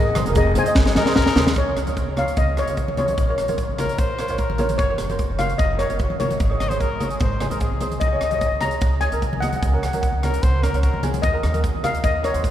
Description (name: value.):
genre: calypso.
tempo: 149 BPM.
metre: 4/4.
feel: straight.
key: Db major.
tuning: A4 = 440 Hz.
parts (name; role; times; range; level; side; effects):
steel pan; melody; 0.0-12.5 s; Ab4 to Bb5; -25 LUFS; left 2 dB; none.
upright bass; bass; 0.0-12.5 s; F1 to Ab2; -24 LUFS; equal; none.
ukulele; accompaniment; 0.2-12.5 s; Db4 to Eb5; -27 LUFS; right 3 dB; none.
tight funk drum kit; drums; 0.2-12.5 s; hi-hat, kick drum, rim click, snare drum; -23 LUFS; equal; none.
congas; percussion; 0.2-11.9 s; none; -29 LUFS; left 1 dB; none.
clear trumpet; second line; 0.9-11.1 s; Ab4 to Eb5; -31 LUFS; left 4 dB; none.
room: wet cathedral reverb, RT60 6.1 s.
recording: recorded in a church or concert hall.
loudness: -18 LUFS.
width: side -11 dB against mid.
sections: 0.0-1.6 A section; 1.6-12.5 B section.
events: drum fill 0.8-1.6.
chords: 0.0 Abadd9; 1.6 Db; 3.2 Bbm; 4.8 Gb; 6.4 Absus4; 7.2 Ab; 8.0 Dbsus2; 9.6 Gb/Db; 11.2 Ebm.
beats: 0.36 0.76 1.16 | 1.57 1.97 2.37 2.77 | 3.18 3.58 3.98 4.39 | 4.79 5.19 5.60 6.00 | 6.40 6.81 7.21 7.61 | 8.01 8.42 8.82 9.22 | 9.62 10.03 10.43 10.83 | 11.23 11.63 12.03 12.43.